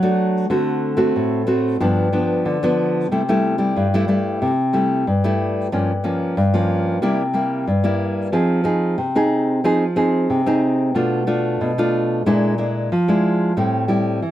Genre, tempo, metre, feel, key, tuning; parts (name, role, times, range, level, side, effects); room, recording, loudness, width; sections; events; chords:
samba; 92 BPM; 4/4; straight; G major, C major from 3.1 s; A4 = 440 Hz
nylon-string guitar; solo; 0.0-14.3 s; G2 to Ab4; -17 LUFS; equal
moderate studio reverb, RT60 0.6 s; -17 LUFS; side -13 dB against mid
0.0-3.1 A section; 3.1-14.3 B section
0.0 Bm7 (rootless); 0.5 D7; 1.8 G7; 3.1 C6; 5.7 Gm7b5; 7.0 C7; 8.3 Fm7; 10.9 Bm7b5; 12.3 Bb7#11; 13.6 Am7